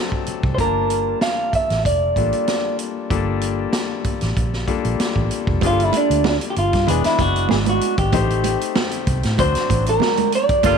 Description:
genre	lush 1970s-style soul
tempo	95 BPM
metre	4/4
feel	swing 54% on 16ths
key	G dorian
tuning	A4 = 436 Hz
part	clear grand piano	accompaniment	0.0-10.8 s	F#3 to A5	-24 LUFS	left 11 dB	none
part	vintage drum kit	drums	0.1-10.8 s	hi-hat, kick drum, snare drum	-23 LUFS	right 1 dB	none
part	vintage muted fingered electric bass	bass	0.3-10.8 s	E1 to A2	-22 LUFS	right 1 dB	none
part	electric guitar through a small old amp	melody	0.5-10.8 s	D4 to F5	-19 LUFS	right 1 dB	none
part	congas	percussion	5.6-10.8 s	none	-25 LUFS	right 12 dB	none
part	clear horn section	stabs	10.6-10.8 s	Bb3 to F4	-19 LUFS	right 13 dB	none
part	triangle	percussion	10.6-10.8 s	none	-40 LUFS	left 15 dB	none
room	light reverb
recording	1960s-style stereo with parts hard left and right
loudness	-17 LUFS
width	side -6 dB against mid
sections	0.0-5.6 A section; 5.6-10.8 B section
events	clean electric guitar solo 5.6-10.8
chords	0.0 D7; 0.6 Gm9; 6.9 E7; 8.1 Am7b5; 9.4 D7

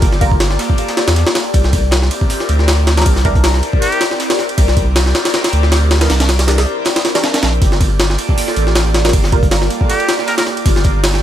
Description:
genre	drum and bass, jungle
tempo	158 BPM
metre	4/4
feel	swing 55% on 16ths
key	unclear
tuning	A4 = 440 Hz
part	airy breathy pad	sustained chords	0.0-11.2 s	Bb3 to D5	-20 LUFS	equal	chorus, phaser, vintage 12-bit sampler grit
part	filtered dub chord stab	stabs	0.0-0.4, 3.0-3.5, 6.0-9.6 s	E3 to Bb4	-24 LUFS	right 1 dB	phaser, dub echo
part	saturated sub bass	bass	0.0-11.2 s	G1 to E2	-14 LUFS	equal	none
part	crunchy breakbeat drum kit	drums	0.0-11.2 s	hi-hat, snare drum	-29 LUFS	left 2 dB	none
part	jungle sampler-style drum kit	drums	0.0-11.2 s	hi-hat, kick drum, ride cymbal, snare drum	-14 LUFS	equal	overdrive
part	trumpet with straight mute	melody	3.8-4.1, 9.9-10.4 s	G4 to Bb4	-22 LUFS	equal	dub echo
room	studio reverb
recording	faint mains hum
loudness	-11 LUFS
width	side -11 dB against mid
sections	0.0-11.2 A section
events	none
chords	0.0 Gm7; 1.5 C9; 7.6 Gm7

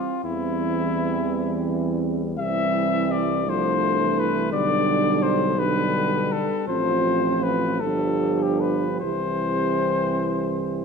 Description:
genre	classical, hymn-like piece for brass band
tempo	48-58 BPM (dotted quarters)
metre	6/8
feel	rubato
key	C major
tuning	A4 = 444 Hz
part	warm flugelhorn	melody	0.0-10.8 s	E4 to E5	-25 LUFS	left 6 dB	none
part	mellow French horn section	second line	0.0-10.8 s	C4 to G4	-27 LUFS	right 9 dB	none
part	clear trombone	accompaniment	0.2-10.8 s	D3 to F3	-30 LUFS	right 4 dB	none
part	warm euphonium	accompaniment	0.2-10.8 s	G3 to D4	-29 LUFS	equal	none
part	warm tuba	bass	0.2-10.8 s	G1 to E2	-28 LUFS	right 1 dB	none
room	moderate scoring stage reverb, RT60 1.6 s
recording	dark, warm production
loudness	-20 LUFS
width	side -5 dB against mid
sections	0.0-10.8 A section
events	none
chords	0.2 C/E; 2.4 C; 3.5 Dm7/C; 4.5 G/B; 6.7 F/A; 7.8 G5; 9.0 C

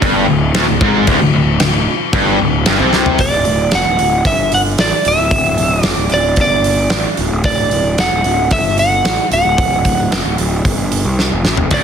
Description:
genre	hard rock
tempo	113 BPM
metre	4/4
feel	straight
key	D mixolydian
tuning	A4 = 436 Hz
part	distorted electric guitar	riff	0.0-3.2, 11.7-11.8 s	D2 to B#2	-17 LUFS	right 14 dB	overdrive
part	overdriven electric guitar	riff	0.0-3.2, 11.7-11.8 s	D2 to B#2	-16 LUFS	left 11 dB	none
part	fuzz picked electric bass	bass	0.0-11.8 s	D1 to B#1	-17 LUFS	equal	overdrive
part	big rock drum kit	drums	0.0-11.8 s	crash cymbal, hi-hat, kick drum, snare drum, toms	-16 LUFS	equal	none
part	lightly driven lead guitar	melody	3.2-11.8 s	D5 to F#5	-15 LUFS	right 1 dB	slapback echo
room	light reverb, small room ambience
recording	dense, heavily limited modern master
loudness	-11 LUFS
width	side -7 dB against mid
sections	0.0-3.2 A section; 3.2-11.8 B section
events	drum fill 2.9, 11.2-11.7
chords	0.0 G#maj7#11/D; 3.2 D

